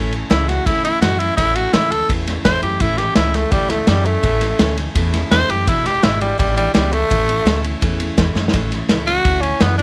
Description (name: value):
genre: rockabilly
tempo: 168 BPM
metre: 4/4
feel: straight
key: A major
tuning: A4 = 440 Hz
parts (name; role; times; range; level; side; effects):
- picked steel-string acoustic guitar; accompaniment; 0.0-9.8 s; E2 to E4; -26 LUFS; equal; none
- upright bass; bass; 0.0-9.8 s; E1 to F#2; -24 LUFS; equal; none
- vintage drum kit; drums; 0.1-9.8 s; kick drum, ride cymbal, snare drum; -21 LUFS; equal; none
- raspy tenor saxophone; melody; 0.3-9.8 s; G3 to C5; -20 LUFS; equal; none
room: small room ambience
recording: none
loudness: -17 LUFS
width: mono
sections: 0.0-8.5 A section; 8.5-9.8 A section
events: tenor saxophone solo 0.0-9.8; drum fill 8.4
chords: 0.0 A; 5.7 E7; 7.1 A